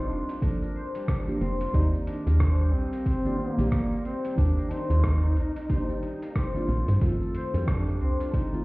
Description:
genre	organic downtempo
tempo	91 BPM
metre	4/4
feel	swing 60% on 16ths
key	unclear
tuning	A4 = 440 Hz
part	mellow duduk	melody	0.0-8.6 s	Bb3 to Eb4	-33 LUFS	equal	digital delay
part	deep mellow chord stab	accompaniment	0.0-8.6 s	Eb3 to D5	-34 LUFS	right 1 dB	chorus, sidechain pumping, digital delay
part	guzheng	arpeggios	0.0-8.6 s	G3 to C5	-35 LUFS	left 2 dB	digital delay
part	woody FM bass	bass	0.0-8.2 s	F1 to G2	-24 LUFS	equal	sidechain pumping
part	dusty soul sampler-style drum kit	drums	0.3-8.6 s	hi-hat, rim click, shaker	-40 LUFS	equal	none
part	electronic kick drum	drums	0.4-8.5 s	none	-27 LUFS	equal	overdrive
room	light reverb, digital ambience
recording	heard muffled through a wall, stone room reverb, EQ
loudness	-24 LUFS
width	side -22 dB against mid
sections	0.0-8.6 A section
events	none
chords	0.0 Bbmaj7; 1.7 Ebmaj7; 7.0 F7

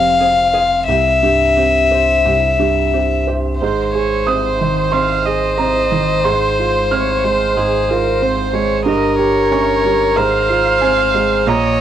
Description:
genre	neoclassical piano and strings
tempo	91 BPM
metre	4/4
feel	rubato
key	F minor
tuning	A4 = 440 Hz
part	rich violin	melody	0.0-11.8 s	Bb4 to F5	-15 LUFS	left 4 dB	tape echo
part	felt-muted upright piano	accompaniment	0.0-11.8 s	C2 to F6	-18 LUFS	right 6 dB	cassette tape
part	pure sine sub bass	bass	0.0-11.8 s	F1 to C2	-24 LUFS	left 1 dB	none
part	rich viola	accompaniment	0.2-11.8 s	G4 to F5	-21 LUFS	right 8 dB	cassette tape
room	light reverb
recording	home recording on cassette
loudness	-12 LUFS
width	side -10 dB against mid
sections	0.0-3.6 A section; 3.6-11.8 B section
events	none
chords	0.0 Fm; 0.9 C; 3.6 Ab; 6.2 Fm/Ab; 8.9 Gdim; 10.2 Fm/Ab

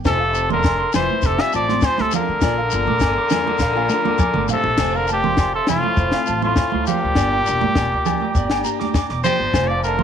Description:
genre	highlife guitar band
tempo	101 BPM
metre	4/4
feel	straight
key	F major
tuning	A4 = 440 Hz
part	picked plugged-in steel-string acoustic guitar	accompaniment	0.0-10.0 s	F3 to G4	-29 LUFS	left 15 dB	none
part	upright bass	bass	0.0-10.0 s	E1 to Bb2	-26 LUFS	equal	none
part	clear trumpet	melody	0.1-10.0 s	F4 to E5	-20 LUFS	equal	none
part	raspy tenor saxophone	second line	0.1-10.0 s	A2 to G3	-27 LUFS	left 12 dB	none
part	electric guitar through a small old amp	arpeggios	0.1-10.0 s	C5 to D6	-27 LUFS	right 11 dB	slapback echo
part	compact cocktail drum kit	drums	0.1-9.7 s	crash cymbal, kick drum, snare drum, toms	-22 LUFS	left 1 dB	none
part	agogo bells	percussion	0.1-9.7 s	none	-30 LUFS	left 14 dB	none
part	shekere	percussion	0.1-10.0 s	none	-27 LUFS	left 5 dB	none
part	congas	percussion	0.5-10.0 s	none	-25 LUFS	right 13 dB	none
part	combo organ	sustained chords	4.8-10.0 s	C5 to Bb5	-32 LUFS	right 11 dB	none
room	light reverb, small room ambience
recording	1960s-style stereo with parts hard left and right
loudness	-16 LUFS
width	side -8 dB against mid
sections	0.0-4.8 A section; 4.8-10.0 A section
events	drum fill 3.6-4.8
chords	0.0 F; 2.4 Bb; 4.8 F; 7.2 Gm

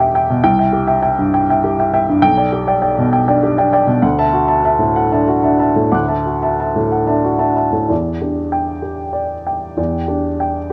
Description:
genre	neoclassical minimalist piano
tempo	60-68 BPM (dotted quarters)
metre	6/8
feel	rubato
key	E minor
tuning	A4 = 440 Hz
part	warm upright piano	solo	0.0-10.7 s	B1 to F#6	-16 LUFS	equal	none
room	light reverb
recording	worn, warbling old tape, cassette tape, warbly pitch drift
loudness	-16 LUFS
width	mono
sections	0.0-7.9 A section; 7.9-10.7 B section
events	none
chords	0.4 C; 2.2 G/B; 4.0 Dadd9; 7.9 Em7

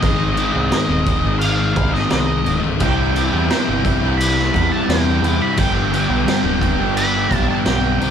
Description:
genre	quiet-loud alternative rock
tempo	86 BPM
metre	4/4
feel	straight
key	unclear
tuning	A4 = 438 Hz
part	octave-fuzz lead guitar	melody	0.0-8.1 s	Eb5 to B5	-23 LUFS	right 2 dB	distortion
part	overdriven semi-hollow guitar	riff	0.0-8.1 s	C2 to Ab3	-26 LUFS	right 2 dB	none
part	thick fuzz guitar	riff	0.0-8.1 s	C2 to Ab4	-22 LUFS	left 8 dB	distortion
part	growling picked electric bass	bass	0.0-8.1 s	C1 to E2	-22 LUFS	right 1 dB	overdrive
part	raw garage drum kit	drums	0.0-8.1 s	crash cymbal, kick drum, snare drum	-20 LUFS	right 1 dB	none
part	overdriven semi-hollow guitar	riff	2.8-8.1 s	C2 to G4	-23 LUFS	right 6 dB	none
room	light reverb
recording	band playing live in one room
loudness	-15 LUFS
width	side -8 dB against mid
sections	0.0-8.1 A section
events	none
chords	0.0 Ab; 2.8 C; 5.6 G

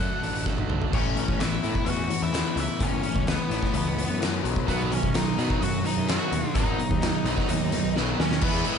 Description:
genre	quiet-loud alternative rock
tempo	128 BPM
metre	4/4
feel	straight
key	unclear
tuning	A4 = 440 Hz
part	octave-fuzz lead guitar	melody	0.0-8.8 s	B3 to F#5	-31 LUFS	equal	distortion
part	twelve-string electric guitar	arpeggios	0.0-4.7 s	A2 to F#4	-34 LUFS	left 9 dB	spring reverb, digital delay
part	cranked stack guitar	riff	0.0-0.9, 4.7-8.8 s	B2 to E4	-30 LUFS	right 17 dB	overdrive, spring reverb
part	fuzz picked electric bass	bass	0.0-8.6 s	F#1 to B2	-30 LUFS	equal	overdrive
part	oversized low-tuned drum kit	drums	0.2-8.8 s	crash cymbal, hi-hat, kick drum, snare drum, toms	-27 LUFS	equal	none
part	thick fuzz guitar	riff	0.9-8.8 s	A2 to G#4	-30 LUFS	left 12 dB	distortion
room	light reverb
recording	nothing above 10.6 kHz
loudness	-23 LUFS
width	side -7 dB against mid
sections	0.9-8.4 A section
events	drum fill 0.5-0.9, 8.0-8.4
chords	0.0 D; 0.9 Aadd9; 4.5 B

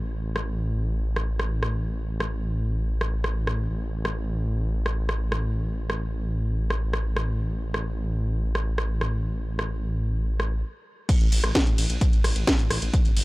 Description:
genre	driving peak-time techno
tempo	130 BPM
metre	4/4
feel	straight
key	unclear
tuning	A4 = 437 Hz
part	detuned saw bass	bass	0.0-13.2 s	G1 to Bb1	-26 LUFS	equal	sidechain pumping
part	techno drum kit	drums	0.4-13.2 s	crash cymbal, hi-hat, ride cymbal, rim click, snare drum	-27 LUFS	equal	sidechain pumping on hats, sidechain pumping on cymbals
part	electronic kick drum	drums	11.1-13.0 s	none	-21 LUFS	equal	none
room	little or no reverb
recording	dry, gritty hardware recording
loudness	-23 LUFS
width	side -21 dB against mid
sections	0.0-11.1 A section; 11.1-13.2 B section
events	stop 10.6-11.1; drop 11.1-13.2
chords	none

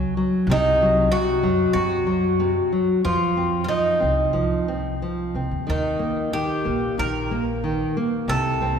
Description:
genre	fado-style ballad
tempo	93 BPM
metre	4/4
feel	rubato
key	unclear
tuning	A4 = 440 Hz
part	nylon-string guitar	accompaniment	0.0-8.8 s	C3 to C4	-24 LUFS	equal	none
part	upright bass	bass	0.0-8.8 s	Bb1 to Gb2	-27 LUFS	right 1 dB	none
part	Irish bouzouki	melody	0.5-8.8 s	Eb4 to Bb4	-22 LUFS	left 1 dB	none
room	wet church reverb, RT60 3.5 s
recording	recorded in a church or concert hall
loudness	-19 LUFS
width	side -7 dB against mid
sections	0.0-8.8 A section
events	none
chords	0.5 Cdim; 3.0 F5; 5.7 Eb; 8.3 N.C.

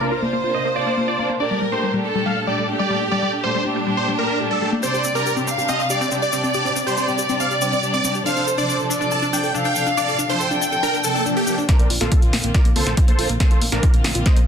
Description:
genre	uplifting trance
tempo	140 BPM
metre	4/4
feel	straight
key	Bb major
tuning	A4 = 439 Hz
part	big supersaw lead	melody	0.0-14.4 s	D4 to A5	-24 LUFS	right 1 dB	phaser, sidechain pumping, low-pass filter, tape echo
part	warm chamber violin section	second line	0.0-11.6 s	D4 to G5	-23 LUFS	equal	tape echo
part	dark studio string section	sustained chords	0.0-14.3 s	Bb2 to A4	-26 LUFS	right 1 dB	sidechain pumping
part	wide unison pluck	arpeggios	0.0-14.4 s	G3 to A4	-26 LUFS	left 2 dB	sidechain pumping, tape echo
part	egg shaker	percussion	4.8-11.7 s	none	-29 LUFS	left 5 dB	none
part	swell	sound effects	11.0-11.7 s	none	-26 LUFS	equal	none
part	electronic kick drum	drums	11.7-14.3 s	none	-15 LUFS	equal	none
part	punchy analog drum machine	drums	11.7-14.5 s	hi-hat, snare drum	-24 LUFS	equal	sidechain pumping on hats, high-pass filter on hats, low-pass filter on hats, sidechain pumping on cymbals, high-pass filter on cymbals, low-pass filter on cymbals, high-pass filter on snare, low-pass filter on snare
part	plucky analog bass	bass	11.8-14.4 s	Bb1 to C2	-25 LUFS	equal	sidechain pumping
room	moderate digital room reverb, RT60 1.0 s, digital ambience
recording	dense, heavily limited modern master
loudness	-17 LUFS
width	side -7 dB against mid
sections	0.0-11.7 A section; 11.7-14.5 B section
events	filter sweep on synth pluck 0.0-11.7; swell 11.0-11.7; build-up 11.7-14.5; drum fill 11.7-14.5; filter sweep on supersaw synth 11.7-14.5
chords	0.0 Bbadd9; 1.4 Gmadd9; 4.8 Csus2; 8.3 Dm7; 11.7 Bbadd9

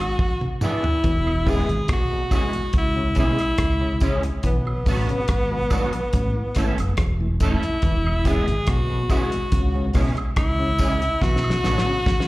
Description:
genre	roots reggae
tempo	71 BPM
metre	4/4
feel	straight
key	unclear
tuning	A4 = 435 Hz
part	bright tenor saxophone	melody	0.0-12.3 s	B3 to G#4	-25 LUFS	equal	tape echo, slapback echo
part	fingered electric bass	bass	0.0-12.3 s	E1 to C#2	-23 LUFS	equal	none
part	woodblock and tambourine	percussion	0.0-11.8 s	none	-37 LUFS	right 4 dB	none
part	damped 70s drum kit	drums	0.2-12.3 s	hi-hat, kick drum, rim click, snare drum, toms	-23 LUFS	equal	none
part	mellow tonewheel organ	accompaniment	0.4-11.9 s	E2 to F#4	-33 LUFS	left 1 dB	slow rotary speaker
part	electric guitar at the edge of break-up	accompaniment	0.6-11.8 s	E3 to A4	-30 LUFS	right 2 dB	ensemble chorus, tape echo, slapback echo
part	overdriven clav	arpeggios	1.0-12.0 s	A2 to E3	-32 LUFS	left 3 dB	phaser, slapback echo
room	small room ambience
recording	live gig heard through the venue's PA, club reverb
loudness	-19 LUFS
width	side -19 dB against mid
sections	0.0-1.0 A section; 1.0-12.3 B section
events	drum fill 0.2-1.0, 11.2-12.3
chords	0.0 E7; 1.0 E; 2.7 C#m; 4.4 Bm; 6.1 A; 7.8 E; 9.5 C#m; 11.2 Bm

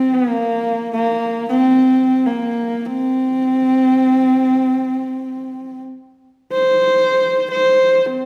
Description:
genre	mongolian traditional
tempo	78 BPM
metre	4/4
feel	straight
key	unclear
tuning	A4 = 439 Hz
part	dark horsehead fiddle	solo	0.0-8.3 s	Bb3 to C5	-17 LUFS	equal	none
room	wet recital hall reverb, RT60 1.3 s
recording	recorded in a church or concert hall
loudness	-16 LUFS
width	mono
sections	0.0-8.3 A section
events	none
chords	none

